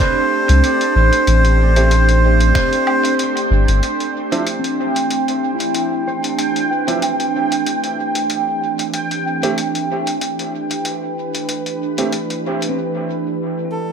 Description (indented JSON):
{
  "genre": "ambient dub",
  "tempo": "94 BPM",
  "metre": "4/4",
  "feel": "swing 55% on 16ths",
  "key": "unclear",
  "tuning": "A4 = 445 Hz",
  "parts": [
    { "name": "melodica", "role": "melody", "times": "0.0-3.1, 13.7-13.9 s", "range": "A4 to C5", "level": "-19 LUFS", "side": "right 2 dB", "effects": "dub echo" },
    { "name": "soft additive organ-like pad", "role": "sustained chords", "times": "0.0-13.9 s", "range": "E3 to B4", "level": "-21 LUFS", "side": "right 1 dB", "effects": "ensemble chorus, built-in reverb" },
    { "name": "pedal steel guitar", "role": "arpeggios", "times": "0.0-12.8 s", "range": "C4 to C6", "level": "-26 LUFS", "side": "left 1 dB", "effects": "low-pass filter, dub echo" },
    { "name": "electronic kick drum", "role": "drums", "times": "0.0-2.7 s", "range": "none", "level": "-19 LUFS", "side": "equal", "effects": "overdrive, studio ambience" },
    { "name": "lo-fi sampler-style drum kit", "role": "drums", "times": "0.0-12.7 s", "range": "finger snaps, hi-hat, woodblock", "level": "-26 LUFS", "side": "left 2 dB", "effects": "overdrive, studio ambience, dub echo" },
    { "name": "soft dub sub bass", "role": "bass", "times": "0.5-3.8 s", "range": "G1 to C2", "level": "-12 LUFS", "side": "equal", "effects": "none" },
    { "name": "bright upright piano", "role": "stabs", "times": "1.8-12.1 s", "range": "F3 to G4", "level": "-26 LUFS", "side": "right 2 dB", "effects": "low-pass filter, dub echo" },
    { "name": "bubbling stepped-filter texture", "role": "texture", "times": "3.8-12.8 s", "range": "G5", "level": "-23 LUFS", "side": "right 3 dB", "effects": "chorus, built-in reverb" }
  ],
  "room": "moderate lush hall reverb, RT60 1.6 s",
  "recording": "none",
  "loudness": "-15 LUFS",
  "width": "side -7 dB against mid",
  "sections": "0.0-3.8 A section; 3.8-13.9 B section",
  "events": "none",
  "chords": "0.0 Am7; 3.8 D7sus2; 8.9 A7(no3)",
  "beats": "0.00 0.64 | 1.27 1.91 2.55 3.19 | 3.83 4.46 5.10 5.74 | 6.38 7.02 7.66 8.29 | 8.93 9.57 10.21 10.85 | 11.49 12.12 12.76 13.40"
}